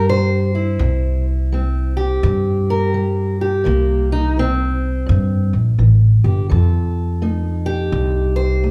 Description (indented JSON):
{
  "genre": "acoustic country blues, solo or duo",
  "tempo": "84 BPM",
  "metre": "4/4",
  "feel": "swing 62% on 8ths",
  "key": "C mixolydian",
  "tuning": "A4 = 436 Hz",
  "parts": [
    { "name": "fingerpicked steel-string acoustic guitar", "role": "melody", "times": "0.0-8.7 s", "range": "G2 to C5", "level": "-23 LUFS", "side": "equal", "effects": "none" },
    { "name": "upright bass", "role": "bass", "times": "0.0-8.7 s", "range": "G1 to G2", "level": "-18 LUFS", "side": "equal", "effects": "none" }
  ],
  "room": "moderate large studio reverb, RT60 1.3 s",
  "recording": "band playing live in one room",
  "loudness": "-17 LUFS",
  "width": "mono",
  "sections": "0.0-8.7 A section",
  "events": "none",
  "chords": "0.0 C7; 6.5 F7",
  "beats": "0.08 | 0.80 1.51 2.22 2.94 | 3.65 4.36 5.08 5.79 | 6.50 7.21 7.92 8.63"
}